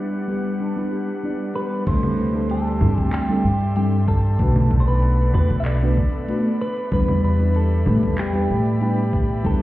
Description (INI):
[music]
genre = sunset chillout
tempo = 95 BPM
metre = 4/4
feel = straight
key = E minor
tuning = A4 = 444 Hz
[part]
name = mellow FM electric piano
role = accompaniment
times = 0.0-9.6 s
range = G3 to D5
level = -24 LUFS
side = equal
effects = chorus, phaser, auto-pan, shimmer reverb
[part]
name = airy breathy pad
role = sustained chords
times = 0.0-9.6 s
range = D4 to C6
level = -33 LUFS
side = equal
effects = chorus, shimmer reverb
[part]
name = steel pan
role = arpeggios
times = 0.0-1.8 s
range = D4 to G4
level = -34 LUFS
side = left 2 dB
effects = digital delay, shimmer reverb
[part]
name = clean electric guitar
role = melody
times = 1.6-9.6 s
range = G4 to E5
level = -28 LUFS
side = equal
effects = phaser, ping-pong delay, shimmer reverb
[part]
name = upright bass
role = bass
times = 1.9-9.6 s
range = B1 to A2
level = -20 LUFS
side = equal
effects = none
[part]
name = electronic kick drum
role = drums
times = 1.9-9.6 s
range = none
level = -22 LUFS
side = equal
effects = none
[part]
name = smooth R&B drum kit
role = drums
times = 1.9-9.6 s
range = congas, crash cymbal, handclaps, hi-hat, shaker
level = -26 LUFS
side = equal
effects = none
[sound]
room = moderate lush hall reverb, RT60 1.6 s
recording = heard muffled through a wall, stone room reverb, EQ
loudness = -18 LUFS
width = side -16 dB against mid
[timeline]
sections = 0.0-1.9 A section; 1.9-9.6 B section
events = filter sweep on steel pan 0.0-1.9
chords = 0.0 Em7; 1.9 D9sus4; 4.4 Bm7; 6.6 Em7